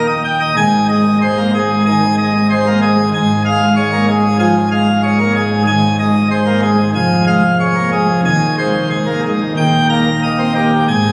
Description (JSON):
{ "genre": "classical, organ toccata", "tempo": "93 BPM", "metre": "4/4", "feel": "straight", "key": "Ab major", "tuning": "A4 = 441 Hz", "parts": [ { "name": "pipe organ, plenum", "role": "solo", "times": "0.0-11.1 s", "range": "Eb1 to Bb5", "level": "-14 LUFS", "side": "equal", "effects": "none" } ], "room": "wet cathedral reverb, RT60 4.8 s", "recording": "recorded on a phone in the room, studio reverb, vinyl crackle, compression", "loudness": "-14 LUFS", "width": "mono", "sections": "0.6-11.1 A section", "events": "none", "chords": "0.0 Eb; 0.6 Ab; 3.1 Db/Ab; 5.7 Ab; 7.0 Db/F; 8.3 Ab/Eb; 9.6 Eb" }